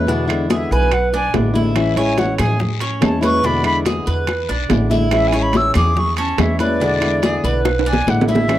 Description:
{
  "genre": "latin, Cuban son and guajira",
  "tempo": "143 BPM",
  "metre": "4/4",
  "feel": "straight",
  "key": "unclear",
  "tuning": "A4 = 440 Hz",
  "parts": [
    { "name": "flamenco guitar", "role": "accompaniment", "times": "0.0-8.6 s", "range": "B2 to E4", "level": "-20 LUFS", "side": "left 2 dB", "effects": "none" },
    { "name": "Cuban tres", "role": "arpeggios", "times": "0.0-8.6 s", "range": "C#4 to C#5", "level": "-22 LUFS", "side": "right 3 dB", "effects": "none" },
    { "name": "upright bass", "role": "bass", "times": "0.0-8.6 s", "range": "A1 to A2", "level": "-21 LUFS", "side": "equal", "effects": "none" },
    { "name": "bongos", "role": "percussion", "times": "0.1-8.6 s", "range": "none", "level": "-23 LUFS", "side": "left 4 dB", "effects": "none" },
    { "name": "congas", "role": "percussion", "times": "0.1-8.6 s", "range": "none", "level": "-24 LUFS", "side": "left 2 dB", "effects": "none" },
    { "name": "claves", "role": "percussion", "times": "0.3-8.6 s", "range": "none", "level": "-33 LUFS", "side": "right 10 dB", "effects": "none" },
    { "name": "timbales", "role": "percussion", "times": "0.3-8.6 s", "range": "none", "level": "-24 LUFS", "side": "right 7 dB", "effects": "none" },
    { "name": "bright concert flute", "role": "melody", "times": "0.5-8.6 s", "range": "D5 to E6", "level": "-20 LUFS", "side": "equal", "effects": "none" },
    { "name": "guiro", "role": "percussion", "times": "1.8-8.6 s", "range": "none", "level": "-33 LUFS", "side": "left 14 dB", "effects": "none" }
  ],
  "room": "small room ambience",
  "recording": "dry, close 1970s-style studio recording",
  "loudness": "-14 LUFS",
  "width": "side -13 dB against mid",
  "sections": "0.0-8.6 A section",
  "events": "flute solo 0.0-8.6; drum fill 7.6-8.5",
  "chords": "0.1 E7; 1.8 Amaj7; 3.4 E7; 5.1 Amaj7; 6.8 E7"
}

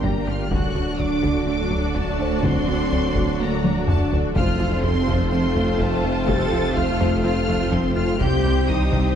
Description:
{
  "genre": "cinematic, hybrid orchestral and electronic film score",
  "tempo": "125 BPM",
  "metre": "4/4",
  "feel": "straight",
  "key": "unclear",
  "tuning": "A4 = 439 Hz",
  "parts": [
    { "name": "rich symphonic violin section", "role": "melody", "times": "0.0-9.2 s", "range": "A5 to A6", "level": "-31 LUFS", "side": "left 2 dB", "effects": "none" },
    { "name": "warm symphonic violin section", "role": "second line", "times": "0.0-9.2 s", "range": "G4 to G5", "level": "-30 LUFS", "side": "left 4 dB", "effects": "none" },
    { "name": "rich symphonic viola section", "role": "accompaniment", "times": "0.0-9.2 s", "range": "A3 to G4", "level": "-30 LUFS", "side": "equal", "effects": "none" },
    { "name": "dark French horn section", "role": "sustained chords", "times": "0.0-9.2 s", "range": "F#3 to D4", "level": "-30 LUFS", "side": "left 4 dB", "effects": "none" },
    { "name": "soft additive organ-like pad", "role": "sustained chords", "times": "0.0-9.2 s", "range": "F#3 to G5", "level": "-30 LUFS", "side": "left 1 dB", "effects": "none" },
    { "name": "glassy wavetable pluck", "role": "arpeggios", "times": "0.0-9.1 s", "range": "C3 to G4", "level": "-32 LUFS", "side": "left 2 dB", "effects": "none" },
    { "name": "plucky analog bass", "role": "riff", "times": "0.0-9.1 s", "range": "C2 to F3", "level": "-28 LUFS", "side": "right 2 dB", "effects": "none" },
    { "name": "mellow tuba", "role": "bass", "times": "0.0-9.2 s", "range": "F1 to D2", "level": "-29 LUFS", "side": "right 4 dB", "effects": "none" },
    { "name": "rich symphonic cello section", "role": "bass", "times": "0.0-9.2 s", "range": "A3 to A4", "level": "-28 LUFS", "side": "right 3 dB", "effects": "none" },
    { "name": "rich symphonic double bass section", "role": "bass", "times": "0.0-9.2 s", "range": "C2 to G2", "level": "-29 LUFS", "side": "right 2 dB", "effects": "none" },
    { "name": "warm sub bass", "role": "bass", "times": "0.0-9.2 s", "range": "D1 to C2", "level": "-30 LUFS", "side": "left 1 dB", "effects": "none" },
    { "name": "taiko ensemble", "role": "drums", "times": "0.0-9.2 s", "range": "none", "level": "-26 LUFS", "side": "left 1 dB", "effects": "none" },
    { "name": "felt-muted upright piano", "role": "texture", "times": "0.0-9.2 s", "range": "A3 to A5", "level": "-36 LUFS", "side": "left 2 dB", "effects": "none" }
  ],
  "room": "moderate recital hall reverb, RT60 1.3 s",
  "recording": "dark, warm production, nothing above 11.0 kHz",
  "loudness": "-18 LUFS",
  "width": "side -8 dB against mid",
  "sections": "0.0-9.2 A section",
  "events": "drum fill 3.6-4.4",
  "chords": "0.0 Gm; 0.5 D; 4.4 F; 8.2 Cm"
}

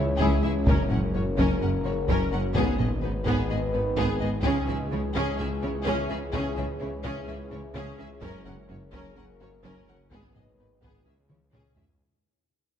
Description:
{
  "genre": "cinematic, hybrid orchestral and electronic film score",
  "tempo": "127 BPM",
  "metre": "4/4",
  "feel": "straight",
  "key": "C# dorian",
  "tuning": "A4 = 440 Hz",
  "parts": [
    { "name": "warm symphonic violin section", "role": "melody", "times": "0.0-11.8 s", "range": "G#4 to F#5", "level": "-35 LUFS", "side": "left 4 dB", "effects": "none" },
    { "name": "warm studio violin section", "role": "second line", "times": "0.0-11.8 s", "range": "B3 to A#4", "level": "-37 LUFS", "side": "left 3 dB", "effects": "none" },
    { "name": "rich symphonic viola section", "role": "accompaniment", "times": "0.0-11.8 s", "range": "B3 to E4", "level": "-34 LUFS", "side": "equal", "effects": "none" },
    { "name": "analog drone", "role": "sustained chords", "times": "0.0-12.0 s", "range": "G#3 to C#5", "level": "-34 LUFS", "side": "equal", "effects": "chorus" },
    { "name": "mellow French horn section", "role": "sustained chords", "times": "0.0-11.7 s", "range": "C#3 to B4", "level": "-35 LUFS", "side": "left 4 dB", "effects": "none" },
    { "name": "clear symphonic cello section", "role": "bass", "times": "0.0-11.8 s", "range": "C#2 to C#3", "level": "-33 LUFS", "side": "right 2 dB", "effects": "none" },
    { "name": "detuned saw bass", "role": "bass", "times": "0.0-12.0 s", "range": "F#1 to C#2", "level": "-33 LUFS", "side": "equal", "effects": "none" },
    { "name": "rich symphonic double bass section", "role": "bass", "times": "0.0-11.8 s", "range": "F#1 to C#2", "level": "-33 LUFS", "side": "right 3 dB", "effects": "none" },
    { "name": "taiko ensemble", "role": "drums", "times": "0.2-12.0 s", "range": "none", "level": "-29 LUFS", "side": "equal", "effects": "none" }
  ],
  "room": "moderate recital hall reverb, RT60 1.7 s",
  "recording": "dark, warm production",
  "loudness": "-24 LUFS",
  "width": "side -9 dB against mid",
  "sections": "0.0-12.0 A section",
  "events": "fade-out 0.0-12.0; drum fill 11.3-12.0",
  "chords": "0.0 C#m; 0.7 F#; 2.6 G#m; 4.4 C#m; 8.2 F#; 10.1 G#m; 11.1 C#m"
}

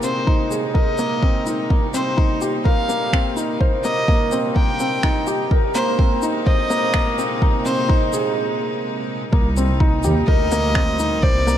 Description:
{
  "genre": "piano and strings electronica",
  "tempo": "126 BPM",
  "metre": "4/4",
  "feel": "straight",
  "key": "C minor",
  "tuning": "A4 = 442 Hz",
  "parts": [
    { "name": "clear violin", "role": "melody", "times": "0.0-11.6 s", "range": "C5 to G5", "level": "-24 LUFS", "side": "right 1 dB", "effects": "low-pass filter, digital delay" },
    { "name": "rich chamber string section", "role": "sustained chords", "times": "0.0-11.6 s", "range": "Bb2 to Eb4", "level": "-28 LUFS", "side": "right 1 dB", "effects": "none" },
    { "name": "felt-muted upright piano", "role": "riff", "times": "0.0-11.6 s", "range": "Bb3 to C5", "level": "-22 LUFS", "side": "left 1 dB", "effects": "digital delay" },
    { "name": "dark chamber double bass section", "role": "bass", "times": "0.0-11.6 s", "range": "G1 to Eb2", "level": "-26 LUFS", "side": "right 1 dB", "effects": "none" },
    { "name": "shaker and finger snaps", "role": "drums", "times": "0.0-11.6 s", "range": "none", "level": "-28 LUFS", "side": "equal", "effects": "none" },
    { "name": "electronic kick drum", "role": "drums", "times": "0.3-11.3 s", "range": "none", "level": "-17 LUFS", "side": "equal", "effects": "none" }
  ],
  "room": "moderate lush hall reverb, RT60 2.5 s",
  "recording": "dark, warm production",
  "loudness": "-16 LUFS",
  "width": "side -10 dB against mid",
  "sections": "0.0-9.3 A section; 9.3-11.6 B section",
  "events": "build-up 0.0-9.3; break 8.4-9.3; drop 9.3-11.6",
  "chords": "0.0 Abadd9/C; 1.7 Cm7; 5.5 Abadd9/C; 9.3 Cm7"
}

